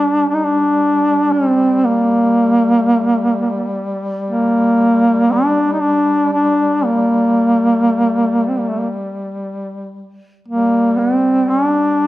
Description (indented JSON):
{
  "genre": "caucasian folk, Caucasian lament",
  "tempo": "59 BPM",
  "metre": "3/4",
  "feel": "rubato",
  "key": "G minor",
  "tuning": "A4 = 440 Hz",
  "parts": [
    { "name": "warm duduk", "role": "melody", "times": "0.0-12.1 s", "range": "A3 to Eb4", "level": "-13 LUFS", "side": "equal", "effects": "none" },
    { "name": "mellow duduk", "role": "drone", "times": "0.0-12.1 s", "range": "G3", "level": "-23 LUFS", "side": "left 1 dB", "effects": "none" }
  ],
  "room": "light reverb",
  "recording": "none",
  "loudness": "-12 LUFS",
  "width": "side -16 dB against mid",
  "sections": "0.0-12.1 A section",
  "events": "none",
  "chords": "none",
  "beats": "0.28 | 1.30 2.32 3.32 | 4.32 5.31 6.31 | 7.32 8.35 9.40 | 10.47 11.52"
}